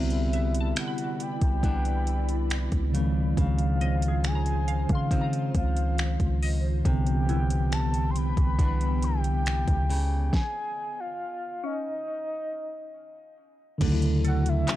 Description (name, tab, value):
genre	contemporary R&B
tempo	69 BPM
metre	4/4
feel	straight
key	unclear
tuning	A4 = 445 Hz
part	soft octave-layered synth lead	melody	0.0-14.8 s	D#5 to C6	-34 LUFS	left 1 dB	chorus, tremolo, tape echo
part	mellow tine electric piano	accompaniment	0.0-14.8 s	C3 to D5	-29 LUFS	equal	medium stereo tremolo
part	ethereal airy pad	sustained chords	0.0-14.8 s	D3 to C#6	-38 LUFS	left 1 dB	ensemble chorus, built-in reverb, sidechain pumping
part	flamenco guitar	arpeggios	0.0-14.8 s	C3 to E4	-38 LUFS	left 1 dB	none
part	long sustained 808-style bass	bass	0.0-14.6 s	C2 to C#3	-26 LUFS	equal	none
part	smooth R&B drum kit	drums	0.1-14.8 s	crash cymbal, finger snaps, handclaps, hi-hat, kick drum, snare drum	-29 LUFS	equal	overdrive
part	glassy wavetable pluck	texture	0.3-14.8 s	C#4 to B#5	-41 LUFS	left 1 dB	chorus, tape echo
room	digital ambience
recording	dry, gritty hardware recording, cassette tape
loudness	-24 LUFS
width	side -14 dB against mid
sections	0.0-13.8 A section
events	stop 10.3-13.8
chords	0.0 Cmaj9; 2.9 C#maj9; 6.9 Cmaj9; 9.9 C#sus2; 13.8 Dmaj9